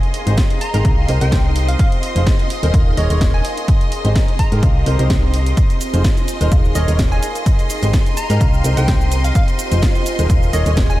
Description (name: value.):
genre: piano house.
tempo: 127 BPM.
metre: 4/4.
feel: swing 54% on 16ths.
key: unclear.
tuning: A4 = 440 Hz.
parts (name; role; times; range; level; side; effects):
string machine, violins; sustained chords; 0.0-11.0 s; Eb5 to C6; -27 LUFS; equal; ensemble chorus, sidechain pumping.
house drum kit; drums; 0.0-11.0 s; hi-hat, shaker, snare drum; -27 LUFS; right 1 dB; none.
warbly tape-like pad; texture; 0.0-11.0 s; C4 to C6; -29 LUFS; right 1 dB; chorus, built-in reverb, sidechain pumping.
clear grand piano; riff; 0.3-11.0 s; Eb4 to F5; -25 LUFS; equal; ensemble chorus, sidechain pumping, analog delay.
solid FM bass; bass; 0.3-11.0 s; Eb1 to Ab2; -16 LUFS; equal; sidechain pumping.
electronic kick drum; drums; 0.4-10.9 s; none; -15 LUFS; equal; none.
plucky unison lead; melody; 0.6-11.0 s; Eb5 to Bb5; -28 LUFS; equal; analog delay.
room: light reverb.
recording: none.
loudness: -13 LUFS.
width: side -16 dB against mid.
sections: 0.0-11.0 A section.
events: none.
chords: 0.0 Abmaj7; 0.8 Cm7; 1.8 Fm7; 2.5 Eb7sus4; 3.4 Abmaj7; 4.6 Cm7; 5.6 Fm7; 6.3 Eb7sus4; 7.2 Abmaj7; 8.4 Cm7; 9.4 Fm7; 10.1 Eb7sus4.